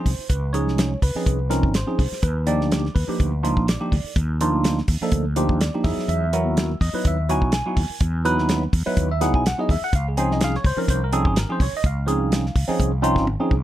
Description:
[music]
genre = electric jazz fusion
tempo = 125 BPM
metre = 4/4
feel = swing 54% on 16ths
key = unclear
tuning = A4 = 440 Hz
[part]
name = tine electric piano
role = accompaniment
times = 0.0-13.5 s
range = F3 to G#5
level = -23 LUFS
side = right 1 dB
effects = phaser
[part]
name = mellow fretless electric bass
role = bass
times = 0.1-13.6 s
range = Ab1 to E2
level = -23 LUFS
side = equal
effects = none
[part]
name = damped 70s drum kit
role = drums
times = 0.1-13.6 s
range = hi-hat, kick drum, snare drum, toms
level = -23 LUFS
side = equal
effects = none
[sound]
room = little or no reverb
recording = none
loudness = -19 LUFS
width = side -13 dB against mid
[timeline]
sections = 0.0-13.6 A section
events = drum fill 13.3-13.6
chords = 0.0 Dbmaj9; 2.2 Ebmaj9; 5.9 Emaj9; 9.9 Dbmaj9

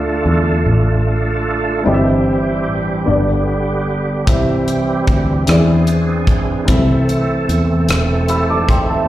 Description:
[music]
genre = slow gospel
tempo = 50 BPM (dotted quarters)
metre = 6/8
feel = straight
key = unclear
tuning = A4 = 440 Hz
[part]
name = dark upright piano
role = accompaniment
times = 0.0-9.1 s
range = G2 to E6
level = -18 LUFS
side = left 2 dB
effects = plate reverb, slapback echo
[part]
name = bright tonewheel organ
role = sustained chords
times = 0.0-9.1 s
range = D3 to A4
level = -18 LUFS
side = right 2 dB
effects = fast rotary speaker, chorus vibrato, plate reverb
[part]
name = fingered electric bass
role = bass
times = 0.0-9.1 s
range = E1 to E2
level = -18 LUFS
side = equal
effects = none
[part]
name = crisp fusion drum kit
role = drums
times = 4.3-8.9 s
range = hi-hat, kick drum, rim click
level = -18 LUFS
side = equal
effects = none
[sound]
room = moderate club reverb, RT60 0.8 s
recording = live gig heard through the venue's PA, recital hall reverb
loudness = -13 LUFS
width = side -14 dB against mid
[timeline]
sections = 0.0-9.1 A section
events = none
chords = 0.0 Dm; 1.9 C/G; 3.1 G; 4.3 C; 5.5 Eaug7; 6.7 Am/C

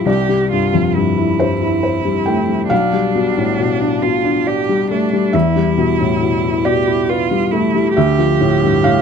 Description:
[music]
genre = neoclassical piano and strings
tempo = 46 BPM (dotted quarters)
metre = 6/8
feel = rubato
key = unclear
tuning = A4 = 439 Hz
[part]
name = rich cello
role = second line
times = 0.0-9.0 s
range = D4 to G4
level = -19 LUFS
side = right 7 dB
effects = none
[part]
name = felt-muted upright piano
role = accompaniment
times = 0.0-9.0 s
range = B1 to G5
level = -14 LUFS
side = left 2 dB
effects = none
[sound]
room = light reverb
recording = close, detailed microphones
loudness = -13 LUFS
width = side -6 dB against mid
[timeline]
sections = 0.0-9.0 A section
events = none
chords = 0.1 C; 2.7 G/B; 5.3 Em; 8.0 Dmadd9

